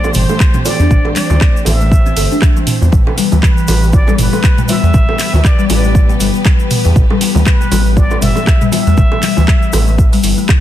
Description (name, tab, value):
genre	afro house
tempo	119 BPM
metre	4/4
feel	swing 58% on 16ths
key	unclear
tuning	A4 = 440 Hz
part	trumpet with plunger mute	melody	0.0-10.4 s	B4 to E5	-22 LUFS	equal	ping-pong delay
part	warm studio string section	sustained chords	0.0-10.6 s	E3 to C5	-23 LUFS	right 1 dB	sidechain pumping
part	kalimba	arpeggios	0.0-10.6 s	B2 to A4	-18 LUFS	left 6 dB	sidechain pumping, ping-pong delay
part	smooth synth bass	bass	0.0-10.3 s	G1 to E2	-14 LUFS	equal	sidechain pumping
part	bongos	percussion	0.0-9.8 s	none	-23 LUFS	right 6 dB	none
part	cabasa	percussion	0.0-10.6 s	none	-29 LUFS	left 2 dB	none
part	congas	percussion	0.0-10.5 s	none	-22 LUFS	left 2 dB	none
part	afro-pop drum kit	drums	0.1-10.6 s	handclaps, hi-hat, rim click, toms	-18 LUFS	right 2 dB	none
part	electronic kick drum	drums	0.4-10.6 s	none	-10 LUFS	equal	none
room	studio ambience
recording	dense, heavily limited modern master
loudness	-9 LUFS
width	side -12 dB against mid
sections	0.0-10.6 A section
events	none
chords	0.0 Am7; 2.9 Em